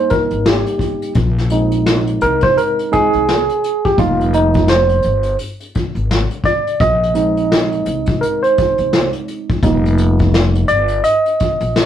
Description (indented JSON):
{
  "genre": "hip hop, jazz-hop",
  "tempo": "85 BPM",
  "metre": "4/4",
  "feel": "swing 60% on 16ths",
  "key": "F dorian",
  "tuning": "A4 = 445 Hz",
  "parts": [
    { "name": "tine electric piano", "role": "accompaniment", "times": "0.0-11.9 s", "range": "G3 to Eb5", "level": "-15 LUFS", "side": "right 2 dB", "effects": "medium stereo tremolo" },
    { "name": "vintage brush drum kit", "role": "drums", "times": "0.1-11.9 s", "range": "hi-hat, kick drum, snare drum", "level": "-18 LUFS", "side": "left 2 dB", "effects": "none" },
    { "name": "upright bass", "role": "bass", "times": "0.3-11.9 s", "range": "F1 to C2", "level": "-18 LUFS", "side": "left 2 dB", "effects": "none" }
  ],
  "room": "moderate studio reverb, RT60 0.6 s",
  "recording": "rough rehearsal-room recording, tube saturation",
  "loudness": "-13 LUFS",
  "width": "side -10 dB against mid",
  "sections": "0.0-11.9 A section",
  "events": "tine electric piano solo 0.0-11.9",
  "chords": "0.0 F9sus4 (rootless); 1.2 Bb9sus4; 4.0 F9sus4; 6.8 Bb9sus4; 9.6 F9sus4"
}